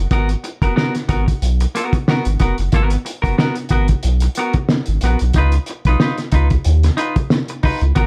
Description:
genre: funk.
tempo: 92 BPM.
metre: 4/4.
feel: swing 56% on 16ths.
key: G# dorian.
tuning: A4 = 441 Hz.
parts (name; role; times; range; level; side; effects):
round analog bass; bass; 0.0-8.1 s; E#1 to D#2; -18 LUFS; equal; none.
semi-hollow electric guitar; accompaniment; 0.1-8.1 s; B3 to B4; -24 LUFS; equal; plate reverb.
cloth-damped thuddy drum kit; drums; 0.1-8.1 s; hi-hat, kick drum, snare drum; -21 LUFS; equal; none.
room: light reverb.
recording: dark, warm production.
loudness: -17 LUFS.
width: mono.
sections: 0.0-8.1 A section.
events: none.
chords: 0.0 G#m9; 5.4 C#9.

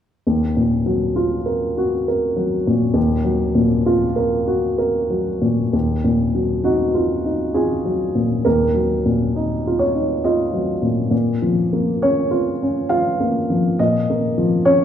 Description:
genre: neoclassical minimalist piano.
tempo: 67 BPM.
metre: 3/4.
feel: rubato.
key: Eb minor.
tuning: A4 = 440 Hz.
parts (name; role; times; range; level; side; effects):
dark upright piano; solo; 0.3-14.8 s; Eb2 to F5; -16 LUFS; equal; none.
room: wet recital hall reverb, RT60 1.7 s.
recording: recorded in a church or concert hall.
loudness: -16 LUFS.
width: side -9 dB against mid.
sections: 0.3-5.7 A section; 5.7-14.8 B section.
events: none.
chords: 0.3 Ebmadd9; 11.1 Bbm.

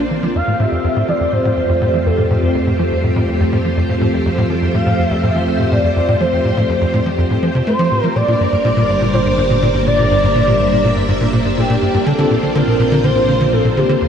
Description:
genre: ambient.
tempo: 123 BPM.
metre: 4/4.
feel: straight.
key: F major.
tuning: A4 = 438 Hz.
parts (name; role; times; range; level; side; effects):
string machine, full ensemble; sustained chords; 0.0-14.1 s; G3 to E5; -19 LUFS; equal; ensemble chorus.
tight sequencer bass; riff; 0.0-14.1 s; Eb2 to A3; -17 LUFS; equal; lush chorus, ping-pong delay.
analog drone; bass; 0.0-14.1 s; G1 to F2; -22 LUFS; equal; chorus.
pulsing gated texture; texture; 0.0-14.1 s; C5 to D5; -29 LUFS; left 4 dB; none.
expressive portamento lead; melody; 0.3-14.1 s; G4 to F5; -18 LUFS; equal; ensemble chorus, ping-pong delay.
room: moderate huge ambient reverb, RT60 9.0 s.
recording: none.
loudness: -13 LUFS.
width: side -8 dB against mid.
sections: 0.0-14.1 A section.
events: filter sweep on analog synth bass 0.0-14.1.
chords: 0.4 Fadd9; 8.2 Gm; 12.1 Bbadd9.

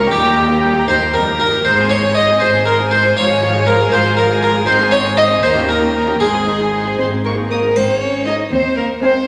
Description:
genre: cinematic, playful, whimsical film cue.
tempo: 79 BPM (dotted quarters).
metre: 6/8.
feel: straight.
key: Ab major.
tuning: A4 = 440 Hz.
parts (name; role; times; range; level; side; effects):
harpsichord; melody; 0.0-6.9 s; G4 to Eb5; -18 LUFS; equal; none.
warm chamber violin section; melody; 0.0-9.2 s; F5 to Eb6; -27 LUFS; equal; none.
warm chamber violin section; second line; 0.0-9.3 s; G4 to Eb5; -19 LUFS; equal; none.
warm studio viola section; accompaniment; 0.0-9.2 s; F3 to Ab4; -25 LUFS; equal; none.
warm chamber cello section; bass; 0.0-9.1 s; Eb2 to Ab2; -24 LUFS; equal; none.
warm chamber double bass section; bass; 0.0-9.1 s; Ab1 to Eb2; -29 LUFS; equal; none.
mellow French horn section; sustained chords; 7.0-9.1 s; Bb3 to Eb4; -23 LUFS; equal; none.
triangle; percussion; 7.8-8.7 s; none; -34 LUFS; equal; none.
room: wet scoring stage reverb, RT60 1.8 s.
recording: none.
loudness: -14 LUFS.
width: mono.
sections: 0.0-7.8 A section; 7.8-9.3 B section.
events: none.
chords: 0.1 Eb; 1.7 Ab; 3.2 Db/Ab; 4.7 Ab; 5.4 Eb7; 6.2 Ab; 7.8 Ab5.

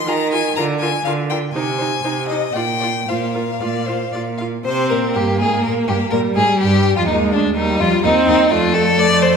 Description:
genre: quick classical-period movement for string quartet.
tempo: 112-128 BPM.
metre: 4/4.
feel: rubato.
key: unclear.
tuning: A4 = 440 Hz.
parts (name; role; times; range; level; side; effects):
clear violin; melody; 0.0-9.4 s; D4 to Bb5; -23 LUFS; left 6 dB; none.
rich violin; second line; 0.1-9.4 s; D4 to F5; -19 LUFS; left 1 dB; none.
clear viola; accompaniment; 0.1-9.4 s; G3 to F4; -21 LUFS; right 1 dB; none.
clear cello; bass; 0.1-9.4 s; D2 to Eb3; -20 LUFS; right 4 dB; none.
room: wet recital hall reverb, RT60 1.5 s.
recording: recorded in a church or concert hall.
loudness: -15 LUFS.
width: side -6 dB against mid.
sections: 0.0-4.7 A section; 4.7-9.4 B section.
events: none.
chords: 0.0 Fm7/Eb; 0.6 Bb/D; 1.5 Ab/C; 2.6 Bb; 4.7 Abmaj9/G; 6.6 Cm; 8.5 F.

